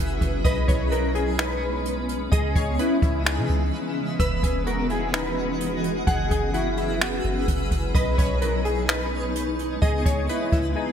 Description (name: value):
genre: hip hop, atmospheric cloud-rap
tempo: 128 BPM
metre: 4/4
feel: half-time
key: unclear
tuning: A4 = 442 Hz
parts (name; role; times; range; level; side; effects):
- granular cloud pad; sustained chords; 0.0-10.9 s; C#3 to D#5; -28 LUFS; equal; built-in reverb, analog chorus, sidechain pumping
- glassy digital keys; arpeggios; 0.0-10.9 s; B3 to E6; -32 LUFS; left 2 dB; chorus, ping-pong delay
- soft 808-style bass; bass; 0.0-10.7 s; E1 to C#3; -27 LUFS; equal; none
- twinkling granular texture; texture; 0.0-10.9 s; G#3 to E5; -36 LUFS; equal; built-in reverb, lush chorus
- jazz brush drum kit; drums; 0.2-10.6 s; finger snaps, hi-hat, kick drum; -25 LUFS; equal; none
- mellow electric guitar; melody; 0.5-10.9 s; E4 to B4; -29 LUFS; left 1 dB; ensemble chorus, ping-pong delay
room: light reverb, small room ambience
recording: bright 1980s-style digital production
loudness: -21 LUFS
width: side -8 dB against mid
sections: 0.0-10.9 A section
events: break 3.7-4.2, 10.8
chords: 0.4 B69; 2.3 C#m9; 4.2 Emaj9; 6.1 F#9sus4; 7.9 B69; 9.8 C#m9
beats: | 0.45 0.92 1.38 1.85 | 2.32 2.79 3.26 3.73 | 4.20 4.67 5.13 5.60 | 6.07 6.54 7.01 7.48 | 7.95 8.41 8.88 9.35 | 9.82 10.29 10.76